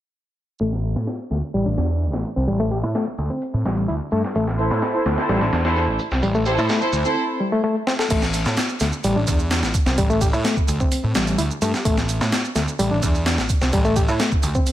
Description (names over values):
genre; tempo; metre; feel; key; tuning
breakbeat, breaks; 128 BPM; 4/4; straight; A minor; A4 = 439 Hz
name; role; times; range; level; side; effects
bright reed electric piano; riff; 0.6-14.7 s; G3 to A4; -23 LUFS; left 1 dB; overdrive, fast tremolo, tube saturation, vintage 12-bit sampler grit, low-pass filter, tape echo
fuzz picked electric bass; bass; 0.6-14.5 s; A1 to A2; -23 LUFS; equal; overdrive, low-pass filter
breakbeat sampler-style drum kit; drums; 0.6-14.7 s; crash cymbal, hi-hat, kick drum, snare drum; -23 LUFS; equal; high-pass filter on kick, high-pass filter on hats, high-pass filter on snare, high-pass filter on cymbals
shaker; drums; 0.6-14.7 s; none; -34 LUFS; right 5 dB; none
warm studio string section; stabs; 4.6-7.2 s; E4 to C5; -22 LUFS; right 1 dB; low-pass filter, tape echo
room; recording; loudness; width
light reverb; low-pass filter; -18 LUFS; side -12 dB against mid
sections
0.6-8.1 A section; 8.1-14.7 B section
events
filter sweep on picked electric bass 0.6-8.1; filter sweep on reed electric piano 0.6-8.1, 8.1-14.7; filter sweep 0.6-8.1; break 7.2-8.1; drum fill 7.9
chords
0.6 Am